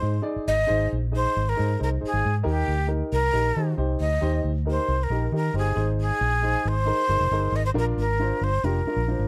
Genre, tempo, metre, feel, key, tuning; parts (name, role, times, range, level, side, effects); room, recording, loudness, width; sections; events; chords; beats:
uptempo 1960s-style soul; 136 BPM; 4/4; straight; Eb major; A4 = 441 Hz
breathy jazz flute; melody; 0.0-9.3 s; G4 to Eb5; -28 LUFS; equal
warm upright piano; accompaniment; 0.0-9.3 s; D4 to Eb5; -32 LUFS; equal
vintage muted fingered electric bass; bass; 0.0-9.3 s; F1 to Eb3; -27 LUFS; equal
light reverb; dark, warm production; -24 LUFS; mono
0.0-9.3 A section
0.0 Ab; 2.5 Eb; 5.8 Ab; 7.8 Bb
0.24 | 0.68 1.12 1.57 2.01 | 2.45 2.89 3.34 3.78 | 4.22 4.66 5.10 5.55 | 5.99 6.43 6.87 7.31 | 7.75 8.20 8.64 9.08